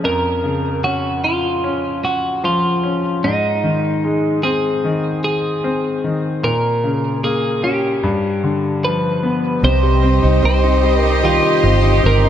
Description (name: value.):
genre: pop ballad.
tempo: 75 BPM.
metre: 4/4.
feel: straight.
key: Bb minor.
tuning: A4 = 441 Hz.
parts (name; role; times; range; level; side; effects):
twelve-string electric guitar; melody; 0.0-12.3 s; Eb4 to C5; -19 LUFS; equal; none.
bright concert grand piano; accompaniment; 0.0-12.3 s; F2 to Eb4; -19 LUFS; left 2 dB; none.
dark symphonic violin section; second line; 9.6-12.3 s; C4 to Eb5; -22 LUFS; right 1 dB; none.
sweeping resonant pad; sustained chords; 10.1-12.3 s; G4 to C6; -22 LUFS; right 2 dB; chorus.
fingerpicked plugged-in steel-string acoustic guitar; arpeggios; 9.6-12.3 s; C3 to G4; -24 LUFS; right 6 dB; wide subtle chorus.
vintage muted fingered electric bass; bass; 9.6-12.3 s; G1 to C2; -15 LUFS; right 1 dB; none.
room: moderate plate reverb, RT60 3.3 s.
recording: dreamy mix soaked in reverb.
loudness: -15 LUFS.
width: side -10 dB against mid.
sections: 0.0-9.6 A section; 9.6-12.3 B section.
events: none.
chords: 0.0 Bbm; 3.2 Ab; 6.4 Bbm7; 8.0 G7; 9.6 Cm.